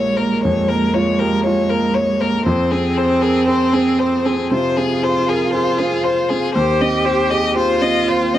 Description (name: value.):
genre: neoclassical piano and strings.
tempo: 59 BPM.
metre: 4/4.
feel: rubato.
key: F minor.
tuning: A4 = 439 Hz.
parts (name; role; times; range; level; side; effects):
rich violin; melody; 0.0-8.4 s; Ab4 to Eb5; -19 LUFS; left 5 dB; none.
warm cello; second line; 0.0-8.4 s; Ab3 to G4; -19 LUFS; right 3 dB; none.
warm baby grand piano; accompaniment; 0.0-8.4 s; Bb1 to Db5; -20 LUFS; right 1 dB; none.
room: light reverb.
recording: dry, close 1970s-style studio recording.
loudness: -14 LUFS.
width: side -12 dB against mid.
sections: 0.0-8.4 A section.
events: none.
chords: 0.0 Bbm7; 2.5 Fm; 6.6 Cm/Eb.